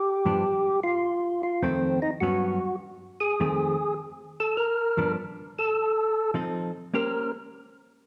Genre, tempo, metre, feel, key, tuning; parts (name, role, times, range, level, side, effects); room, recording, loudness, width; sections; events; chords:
jazz; 102 BPM; 4/4; swing 68% on 8ths; A4 = 439 Hz
percussive tonewheel organ; melody; 0.0-7.3 s; C4 to Bb4; -28 LUFS; equal; slow rotary speaker, overdrive
hollow-body jazz guitar; accompaniment; 0.3-7.3 s; F2 to C5; -32 LUFS; equal
wet recital hall reverb, RT60 1.6 s; recorded in a church or concert hall; -27 LUFS; mono
0.0-6.9 A section; 6.9-8.1 B section
0.0 G7; 1.0 F7; 2.2 Gmaj7#11; 3.4 F7; 4.6 G7; 5.8 F7; 6.9 Bbm69